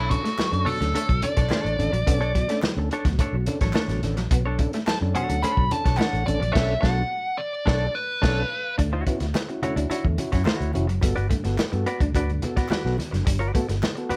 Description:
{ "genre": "funk", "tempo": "107 BPM", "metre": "4/4", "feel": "straight", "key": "B minor", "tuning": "A4 = 439 Hz", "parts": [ { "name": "nasal lead guitar with a parked wah", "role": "melody", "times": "0.0-8.8 s", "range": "F#4 to B5", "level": "-29 LUFS", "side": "equal", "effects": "overdrive" }, { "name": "semi-hollow electric guitar", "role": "accompaniment", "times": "0.0-14.2 s", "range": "D4 to D5", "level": "-33 LUFS", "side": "equal", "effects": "none" }, { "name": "vintage muted fingered electric bass", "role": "bass", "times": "0.0-14.1 s", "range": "E#1 to G2", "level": "-28 LUFS", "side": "equal", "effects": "none" }, { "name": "clean electric guitar", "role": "riff", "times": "0.1-14.2 s", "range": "F#3 to D4", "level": "-35 LUFS", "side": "equal", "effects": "subtle chorus" }, { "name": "tonewheel organ", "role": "stabs", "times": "0.1-14.2 s", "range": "G2 to A4", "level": "-33 LUFS", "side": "equal", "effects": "slow rotary speaker" }, { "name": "crunchy breakbeat drum kit", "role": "drums", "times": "0.1-14.2 s", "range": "crash cymbal, hi-hat, kick drum, snare drum", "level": "-28 LUFS", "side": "equal", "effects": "none" }, { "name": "congas", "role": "percussion", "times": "0.1-14.2 s", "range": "none", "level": "-37 LUFS", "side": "equal", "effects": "none" }, { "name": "group handclap", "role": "percussion", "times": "0.4-14.0 s", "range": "none", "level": "-41 LUFS", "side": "equal", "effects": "none" } ], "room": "light reverb", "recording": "none", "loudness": "-24 LUFS", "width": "mono", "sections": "0.0-8.8 A section; 8.8-14.2 B section", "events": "lead electric guitar solo 0.0-8.8; band accent 6.6-8.8", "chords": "0.0 Bm9; 8.8 Dmaj9; 11.0 Gmaj7" }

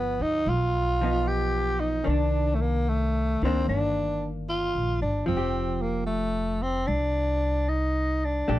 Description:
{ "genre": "jazz ballad", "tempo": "75 BPM", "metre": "4/4", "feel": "swing 69% on 8ths", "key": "unclear", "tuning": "A4 = 440 Hz", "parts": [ { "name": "growling tenor saxophone", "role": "melody", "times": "0.0-8.6 s", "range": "A3 to G4", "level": "-26 LUFS", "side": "equal", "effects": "none" }, { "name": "vintage hollow-body jazz guitar", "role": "accompaniment", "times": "0.0-8.6 s", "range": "Eb3 to G4", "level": "-32 LUFS", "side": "equal", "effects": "none" }, { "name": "upright bass", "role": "bass", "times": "0.0-8.6 s", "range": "F1 to D2", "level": "-28 LUFS", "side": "equal", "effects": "none" } ], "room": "little or no reverb", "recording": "dark, warm production", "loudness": "-24 LUFS", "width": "side -15 dB against mid", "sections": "0.0-8.6 A section", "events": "none", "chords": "0.0 G7b13; 2.1 Cm9; 5.3 Fsus2" }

